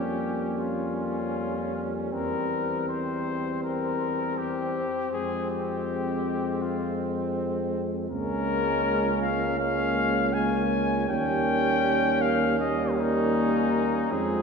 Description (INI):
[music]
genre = classical, brass quintet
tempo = 80 BPM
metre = 4/4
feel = straight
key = F minor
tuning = A4 = 440 Hz
[part]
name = warm trumpet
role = melody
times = 0.0-14.4 s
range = Eb4 to Ab5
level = -29 LUFS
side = left 5 dB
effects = none
[part]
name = warm flugelhorn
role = second line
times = 0.0-14.4 s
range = C4 to Db4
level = -31 LUFS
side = right 5 dB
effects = none
[part]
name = mellow French horn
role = accompaniment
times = 0.0-14.4 s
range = Ab3 to C4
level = -31 LUFS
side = left 4 dB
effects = none
[part]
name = mellow trombone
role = accompaniment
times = 0.0-14.4 s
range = F3 to Ab3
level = -33 LUFS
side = right 2 dB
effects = none
[part]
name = clear bass trombone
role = bass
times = 0.0-14.4 s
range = Db2 to F2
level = -32 LUFS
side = right 1 dB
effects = none
[sound]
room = wet scoring stage reverb, RT60 1.9 s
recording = heard from further back in the room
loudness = -24 LUFS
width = side -5 dB against mid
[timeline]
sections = 0.0-14.4 A section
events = none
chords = 0.0 Gm7b5/F; 2.1 C7/E; 5.1 Fm; 8.1 Bbm7/Db; 11.1 Eb7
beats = 0.59 1.35 | 2.13 2.89 3.64 4.38 | 5.13 5.88 6.62 7.36 | 8.10 8.85 9.59 10.34 | 11.09 11.84 12.59 13.34 | 14.12